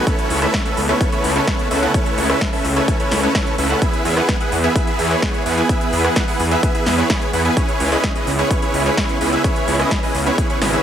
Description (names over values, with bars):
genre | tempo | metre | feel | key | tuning
EDM, festival progressive house | 128 BPM | 4/4 | straight | E major | A4 = 440 Hz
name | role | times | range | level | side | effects
lush unison pad | sustained chords | 0.0-10.8 s | C#3 to G#4 | -24 LUFS | equal | chorus, sidechain pumping
big supersaw lead | riff | 0.0-10.8 s | B3 to G#5 | -19 LUFS | right 1 dB | sidechain pumping, tape echo
big-room dance drum kit | drums | 0.1-10.8 s | hi-hat, rim click, snare drum | -24 LUFS | equal | none
electronic kick drum | drums | 0.1-10.5 s | none | -20 LUFS | equal | overdrive
wide detuned saw bass | bass | 0.3-10.8 s | G#1 to E2 | -20 LUFS | equal | chorus, sidechain pumping
room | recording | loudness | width
light reverb | none | -15 LUFS | side -9 dB against mid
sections
0.0-10.8 A section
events
none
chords
0.1 Aadd9/C#; 3.8 E; 7.6 C#m7